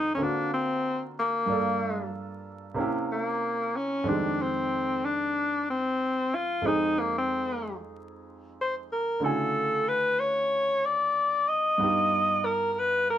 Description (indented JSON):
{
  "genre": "hip hop",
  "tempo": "93 BPM",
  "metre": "4/4",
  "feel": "swing 57% on 16ths",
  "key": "F dorian",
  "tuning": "A4 = 437 Hz",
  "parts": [
    { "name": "warm alto saxophone", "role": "melody", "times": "0.0-13.2 s", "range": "A#3 to Eb5", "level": "-25 LUFS", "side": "left 1 dB", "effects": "none" },
    { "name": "warm grand piano", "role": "accompaniment", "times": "0.0-13.2 s", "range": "F2 to G#5", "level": "-32 LUFS", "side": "right 3 dB", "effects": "none" }
  ],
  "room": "moderate studio reverb, RT60 0.6 s",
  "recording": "band playing live in one room, vinyl crackle",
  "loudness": "-25 LUFS",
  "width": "side -11 dB against mid",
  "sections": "0.0-9.2 A section; 9.2-13.2 B section",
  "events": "none",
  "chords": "0.2 D7alt; 1.5 Gm7; 2.8 C7b9; 4.1 Fm9; 9.2 Dmaj9#11; 11.8 Gaug7",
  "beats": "0.20 0.84 | 1.49 2.13 2.78 3.42 | 4.07 4.71 5.36 6.00 | 6.65 7.29 7.94 8.58 | 9.23 9.87 10.52 11.16 | 11.81 12.45 13.10"
}